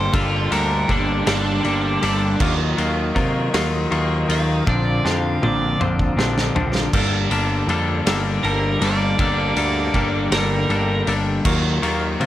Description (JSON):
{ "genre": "indie rock", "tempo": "53 BPM (dotted quarters)", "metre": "6/8", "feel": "straight", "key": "unclear", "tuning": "A4 = 440 Hz", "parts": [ { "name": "biting overdriven guitar", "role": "melody", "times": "0.0-11.1 s", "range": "D4 to F5", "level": "-24 LUFS", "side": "right 4 dB", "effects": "none" }, { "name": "mellow tonewheel organ", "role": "sustained chords", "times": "0.0-6.9 s", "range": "Bb4 to Eb6", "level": "-31 LUFS", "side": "right 2 dB", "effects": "slow rotary speaker" }, { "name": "twelve-string electric guitar", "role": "riff", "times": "0.0-12.3 s", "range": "G2 to A4", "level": "-21 LUFS", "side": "left 2 dB", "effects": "none" }, { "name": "growling picked electric bass", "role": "bass", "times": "0.0-12.3 s", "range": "G1 to C3", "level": "-24 LUFS", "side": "right 1 dB", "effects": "overdrive" }, { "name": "loose indie drum kit", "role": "drums", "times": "0.1-12.3 s", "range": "crash cymbal, kick drum, ride cymbal, snare drum, toms", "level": "-24 LUFS", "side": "equal", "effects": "none" }, { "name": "bright trumpet", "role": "second line", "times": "8.4-11.1 s", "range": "G3 to Bb3", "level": "-30 LUFS", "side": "right 6 dB", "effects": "none" } ], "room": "light reverb", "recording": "none", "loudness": "-17 LUFS", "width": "side -13 dB against mid", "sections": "0.0-6.9 A section; 6.9-12.3 B section", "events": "overdriven electric guitar solo 0.0-6.9; drum fill 4.7-6.9", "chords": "0.0 Gmadd9; 2.4 Ebmadd9; 4.7 Bbadd9; 6.9 Gmadd9; 11.4 Ebmadd9", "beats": "| 0.13 1.26 | 2.40 3.53 | 4.66 5.79 | 6.92 8.05 | 9.19 10.32 | 11.45" }